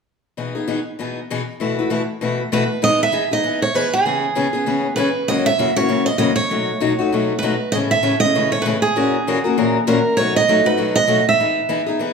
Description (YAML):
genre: jazz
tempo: 196 BPM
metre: 4/4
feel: swing 60% on 8ths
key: E major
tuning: A4 = 440 Hz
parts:
  - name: picked steel-string acoustic guitar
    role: accompaniment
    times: 0.4-12.1 s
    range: F#2 to B4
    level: -19 LUFS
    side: left 4 dB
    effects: none
  - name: picked steel-string acoustic guitar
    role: melody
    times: 2.5-12.1 s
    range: G#4 to E5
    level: -18 LUFS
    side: right 4 dB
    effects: none
room: wet large studio reverb, RT60 1.1 s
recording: band playing live in one room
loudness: -16 LUFS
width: side -5 dB against mid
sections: 0.4-2.8 A section; 2.8-12.1 B section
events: none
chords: 0.4 Emaj7/B; 1.6 B7sus4; 2.8 Emaj7; 4.1 C#m7; 5.3 F#7; 6.5 B9; 7.7 Amaj7; 9.0 F#7/A#; 10.2 B7; 11.4 Emaj7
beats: | 0.37 0.68 0.99 1.29 | 1.60 1.91 2.21 2.52 | 2.83 3.13 3.44 3.75 | 4.05 4.36 4.67 4.97 | 5.28 5.58 5.89 6.20 | 6.50 6.81 7.12 7.42 | 7.73 8.04 8.34 8.65 | 8.96 9.26 9.57 9.87 | 10.18 10.48 10.79 11.10 | 11.40 11.71 12.02